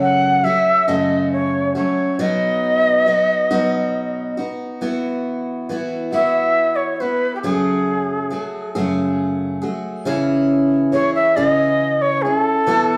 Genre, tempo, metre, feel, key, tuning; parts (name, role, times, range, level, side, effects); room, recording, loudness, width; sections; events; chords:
acoustic folk duo or small band; 46 BPM (dotted quarters); 6/8; straight; E major; A4 = 441 Hz
reedy shakuhachi; melody; 0.0-13.0 s; G4 to F#5; -19 LUFS; equal
picked steel-string acoustic guitar; accompaniment; 0.0-13.0 s; F#2 to G#4; -22 LUFS; equal
wet large studio reverb, RT60 0.9 s; band playing live in one room; -19 LUFS; mono
0.0-4.8 A section; 4.8-13.0 B section
shakuhachi solo 4.8-13.0
0.0 F#m; 2.2 B; 4.8 Esus2; 7.4 F#madd9; 10.1 C#m